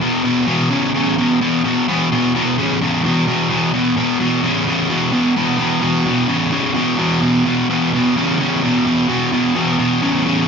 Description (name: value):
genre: rock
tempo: 129 BPM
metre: 4/4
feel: straight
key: unclear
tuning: A4 = 440 Hz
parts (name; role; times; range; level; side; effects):
- overdriven electric guitar; solo; 0.0-10.5 s; E2 to C#3; -14 LUFS; equal; analog delay
room: light reverb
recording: live gig heard through the venue's PA, club reverb, nothing above 7.5 kHz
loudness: -14 LUFS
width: side -6 dB against mid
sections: 0.0-10.5 A section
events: none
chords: 0.0 E5